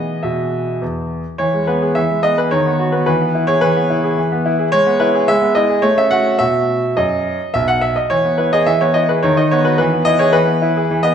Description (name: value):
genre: classical-period piano sonatina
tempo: 107 BPM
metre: 3/4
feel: straight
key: E major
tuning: A4 = 436 Hz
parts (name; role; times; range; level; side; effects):
- bright grand piano; solo; 0.0-11.1 s; B1 to F#5; -13 LUFS; equal; none
room: wet recital hall reverb, RT60 1.6 s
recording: minimal, uncompressed stereo recording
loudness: -13 LUFS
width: side -8 dB against mid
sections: 0.0-1.4 A section; 1.4-11.1 A section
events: none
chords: 0.0 E; 2.5 B/D#; 3.1 E; 4.7 E/G#; 5.8 F#m/A; 6.4 B; 8.1 E; 9.2 B/D#; 9.8 E